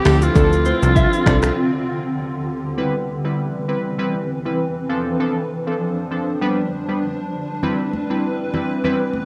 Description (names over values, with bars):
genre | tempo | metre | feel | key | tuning
afrobeats | 99 BPM | 4/4 | swing 55% on 16ths | C major | A4 = 440 Hz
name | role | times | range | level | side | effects
growling alto saxophone | melody | 0.0-2.0 s | F4 to G4 | -24 LUFS | equal | cassette tape, tape echo
granular cloud pad | sustained chords | 0.0-9.3 s | D3 to C5 | -27 LUFS | equal | built-in reverb, cassette tape
glassy digital keys | accompaniment | 0.1-9.0 s | F3 to B4 | -24 LUFS | equal | chorus, cassette tape
nylon-string guitar | riff | 0.1-1.4 s | G4 to E5 | -27 LUFS | equal | cassette tape, tape echo
plucky analog bass | bass | 0.1-1.5 s | C2 to D2 | -19 LUFS | equal | none
afro-pop drum kit | drums | 0.1-1.6 s | finger snaps, hi-hat, kick drum, rim click, shaker | -22 LUFS | equal | cassette tape
congas | percussion | 0.1-1.4, 7.6-9.3 s | none | -31 LUFS | equal | none
room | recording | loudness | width
light reverb, digital ambience | home recording on cassette | -20 LUFS | mono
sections
0.0-2.8 A section; 2.8-9.3 B section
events
break 1.6-2.8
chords
0.1 Dm7; 1.6 G; 2.8 Cmaj7; 4.9 Dm7; 6.4 G; 7.6 Cmaj7